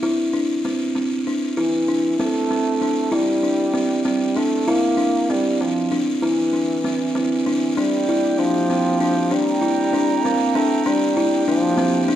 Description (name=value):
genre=contemporary instrumental, chamber music in an uneven meter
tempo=194 BPM (eighths)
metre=5/8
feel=straight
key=C mixolydian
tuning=A4 = 440 Hz
part: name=buzzing kalimba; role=arpeggios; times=0.0-12.2 s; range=C4 to E4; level=-19 LUFS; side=left 1 dB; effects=none
part: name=warm French horn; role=second line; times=1.6-12.1 s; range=E3 to Bb3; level=-23 LUFS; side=right 2 dB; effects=none
part: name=glass harmonica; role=sustained chords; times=7.9-12.2 s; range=Bb3 to Bb5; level=-25 LUFS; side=right 2 dB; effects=none
room=wet recital hall reverb, RT60 1.6 s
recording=dark, warm production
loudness=-17 LUFS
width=side -11 dB against mid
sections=0.0-7.8 A section; 7.8-12.2 B section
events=none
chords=0.0 Cadd9; 7.8 Gm7; 9.3 C5; 10.9 Gm7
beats=| 0.03 0.34 0.65 0.96 1.27 | 1.58 1.89 2.20 2.51 2.82 | 3.13 3.44 3.75 4.06 4.37 | 4.67 4.98 5.29 5.60 5.91 | 6.22 6.53 6.84 7.15 7.46 | 7.77 8.08 8.39 8.70 9.01 | 9.31 9.62 9.93 10.24 10.55 | 10.86 11.17 11.48 11.79 12.10